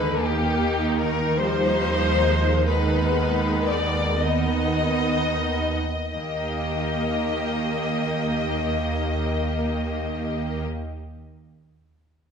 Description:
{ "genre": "classical, slow romantic movement for symphony orchestra", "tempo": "29-54 BPM (dotted quarters)", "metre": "6/8", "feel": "rubato", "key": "Eb major", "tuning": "A4 = 443 Hz", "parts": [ { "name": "rich chamber violin section", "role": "melody", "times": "0.0-10.6 s", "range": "G4 to Eb5", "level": "-26 LUFS", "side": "left 5 dB", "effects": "none" }, { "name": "rich studio violin section", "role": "second line", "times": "0.0-10.6 s", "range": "Bb3 to G4", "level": "-30 LUFS", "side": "equal", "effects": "none" }, { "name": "rich chamber viola section", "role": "accompaniment", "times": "0.0-10.6 s", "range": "D3 to Cb4", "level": "-27 LUFS", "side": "right 3 dB", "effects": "none" }, { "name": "dark chamber cello section", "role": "bass", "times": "0.0-10.6 s", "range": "Eb2", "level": "-29 LUFS", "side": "right 2 dB", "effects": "none" }, { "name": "rich chamber double bass section", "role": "bass", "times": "0.0-10.6 s", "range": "Eb2", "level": "-30 LUFS", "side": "right 3 dB", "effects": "none" } ], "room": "wet scoring stage reverb, RT60 1.5 s", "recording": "minimal, uncompressed stereo recording", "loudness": "-21 LUFS", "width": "side -6 dB against mid", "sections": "0.0-6.1 A section; 6.1-9.9 B section", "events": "slowing down 0.0-6.1", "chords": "0.2 Eb; 2.7 Abm/Eb; 6.1 Eb" }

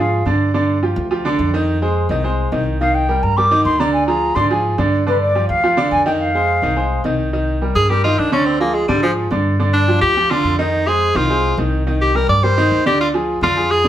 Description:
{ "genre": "latin", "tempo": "212 BPM", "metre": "4/4", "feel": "straight", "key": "C minor", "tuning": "A4 = 439 Hz", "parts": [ { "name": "baroque flute", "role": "melody", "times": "0.0-0.2, 2.8-7.0 s", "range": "B4 to D6", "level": "-17 LUFS", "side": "equal", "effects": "none" }, { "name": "bright concert grand piano", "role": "accompaniment", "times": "0.0-13.9 s", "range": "D3 to Eb5", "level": "-18 LUFS", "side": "right 2 dB", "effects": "none" }, { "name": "upright bass", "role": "bass", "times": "0.0-13.9 s", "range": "C2 to Ab2", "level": "-20 LUFS", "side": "equal", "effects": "none" }, { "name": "clear tenor saxophone", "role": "melody", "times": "7.8-13.9 s", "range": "F3 to D5", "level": "-16 LUFS", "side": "equal", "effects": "none" } ], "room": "wet studio reverb, RT60 0.7 s", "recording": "heard from further back in the room", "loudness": "-14 LUFS", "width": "side -11 dB against mid", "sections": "0.0-7.3 A section; 7.3-13.9 B section", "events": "tenor saxophone solo 7.3-13.9", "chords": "0.0 Ddim; 0.5 G5; 1.7 Fm7; 2.8 Cm7; 3.9 Ddim; 5.1 G5; 6.2 Fm7; 7.3 Cm7; 8.5 Ddim; 9.6 G5; 10.7 Fm7; 11.9 Cm7; 13.0 Ddim" }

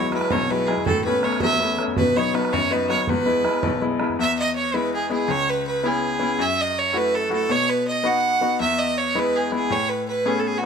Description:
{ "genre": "celtic folk, Celtic jig", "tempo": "109 BPM (dotted quarters)", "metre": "6/8", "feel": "straight", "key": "E major", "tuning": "A4 = 440 Hz", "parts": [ { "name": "clear fiddle", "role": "melody", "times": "0.0-10.7 s", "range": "F#4 to F#5", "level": "-22 LUFS", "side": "right 3 dB", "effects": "plate reverb" }, { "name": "bright grand piano", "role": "accompaniment", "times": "0.0-10.7 s", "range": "B1 to F#4", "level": "-23 LUFS", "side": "left 5 dB", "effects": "none" }, { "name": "bodhran", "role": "percussion", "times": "0.1-4.1 s", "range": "none", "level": "-27 LUFS", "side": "right 4 dB", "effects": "none" } ], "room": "moderate studio reverb, RT60 0.6 s", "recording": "none", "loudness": "-19 LUFS", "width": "side -6 dB against mid", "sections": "0.0-4.2 A section; 4.2-10.7 B section", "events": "none", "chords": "0.0 Eadd9; 0.9 Aadd9; 2.0 B; 3.1 E; 5.3 C#m7; 6.4 F#m7; 7.5 B; 8.6 E; 9.7 Aadd9" }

